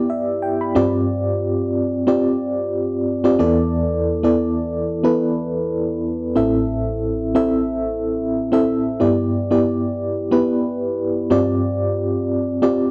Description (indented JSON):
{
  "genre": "pop",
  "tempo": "91 BPM",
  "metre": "4/4",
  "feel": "swing 55% on 16ths",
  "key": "unclear",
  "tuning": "A4 = 441 Hz",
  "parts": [
    { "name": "FM electric piano with tremolo", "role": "solo", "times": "0.0-12.9 s", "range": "A1 to B5", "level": "-20 LUFS", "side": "equal", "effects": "none" }
  ],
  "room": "moderate booth ambience, RT60 0.2 s",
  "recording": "home recording on cassette",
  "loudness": "-20 LUFS",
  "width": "mono",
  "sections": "0.0-12.9 A section",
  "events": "none",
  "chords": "0.0 Em7/G; 0.8 G7sus4; 3.4 E7sus4; 6.4 Am; 9.0 Em7/G; 11.3 G7sus4",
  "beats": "0.43 | 1.09 1.75 2.41 3.06 | 3.73 4.38 5.04 5.70 | 6.36 7.02 7.68 8.34 | 9.00 9.66 10.32 10.98 | 11.64 12.30"
}